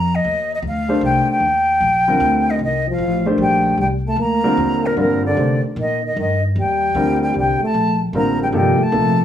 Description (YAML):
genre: jazz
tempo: 152 BPM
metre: 3/4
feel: swing 66% on 8ths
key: C dorian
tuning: A4 = 439 Hz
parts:
  - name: breathy silver concert flute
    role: melody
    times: 0.0-9.2 s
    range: Bb4 to Bb5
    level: -19 LUFS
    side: left 1 dB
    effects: plate reverb
  - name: upright bass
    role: bass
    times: 0.0-9.2 s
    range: G1 to C3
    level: -22 LUFS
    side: left 1 dB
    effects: none
  - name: warm baby grand piano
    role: accompaniment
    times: 0.9-9.2 s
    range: C3 to C5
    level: -19 LUFS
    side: left 2 dB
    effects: none
  - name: breathy trombone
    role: second line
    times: 2.5-9.2 s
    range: Bb2 to Bb3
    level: -22 LUFS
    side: right 2 dB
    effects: none
room: moderate studio reverb, RT60 0.7 s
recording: studio ambience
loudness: -15 LUFS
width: side -10 dB against mid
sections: 0.0-9.2 A section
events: none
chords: 0.0 Cm9